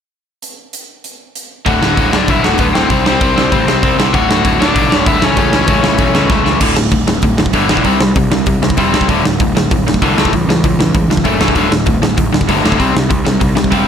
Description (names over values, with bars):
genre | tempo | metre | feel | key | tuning
punk rock | 194 BPM | 4/4 | straight | D major | A4 = 441 Hz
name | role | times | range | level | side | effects
big rock drum kit | drums | 0.4-13.8 s | crash cymbal, hi-hat, kick drum, snare drum | -15 LUFS | right 1 dB | none
overdriven electric guitar | melody | 1.7-6.3 s | B3 to F#5 | -16 LUFS | left 4 dB | none
overdriven electric guitar | riff | 1.7-13.9 s | D2 to C4 | -16 LUFS | left 11 dB | none
overdriven electric guitar | riff | 1.7-13.9 s | D2 to C4 | -17 LUFS | right 12 dB | none
fuzz picked electric bass | bass | 1.7-13.9 s | D1 to C#2 | -18 LUFS | equal | overdrive
room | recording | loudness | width
light reverb | none | -10 LUFS | side -8 dB against mid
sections
0.4-1.7 A section; 1.7-6.6 B section; 6.6-13.9 C section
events
drum fill 6.3-6.6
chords
0.4 N.C.; 1.7 D; 2.9 C5; 4.1 D; 5.2 A/C#; 6.6 D5; 7.9 C5; 9.1 D5; 10.2 A/C#; 11.6 D5; 12.8 C